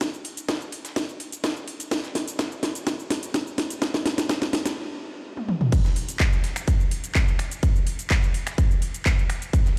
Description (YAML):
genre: house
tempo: 126 BPM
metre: 4/4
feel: straight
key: none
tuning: none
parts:
  - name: breakbeat sampler-style drum kit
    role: drums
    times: 0.0-9.8 s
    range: ride cymbal, snare drum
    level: -42 LUFS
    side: equal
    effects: high-pass filter on snare, high-pass filter on cymbals, high-pass filter on room
  - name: electronic kick drum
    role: drums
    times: 0.0-9.6 s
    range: none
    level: -24 LUFS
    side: equal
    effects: high-pass filter on kick
  - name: house drum kit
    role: drums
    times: 0.0-9.8 s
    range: crash cymbal, finger snaps, handclaps, hi-hat, shaker, snare drum, toms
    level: -29 LUFS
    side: equal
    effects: overdrive
room: light reverb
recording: played on a big sound system in a bare room, stone room reverb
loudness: -25 LUFS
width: mono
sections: 0.0-5.7 A section; 5.7-9.8 B section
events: build-up 0.0-5.7; drum fill 0.0-4.8, 5.4-5.7; stop 4.8-5.7; drop 5.7-9.8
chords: none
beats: | 0.01 0.49 0.96 1.44 | 1.91 2.39 2.87 3.34 | 3.82 4.29 4.77 5.25 | 5.72 6.20 6.68 7.15 | 7.63 8.11 8.58 9.06 | 9.53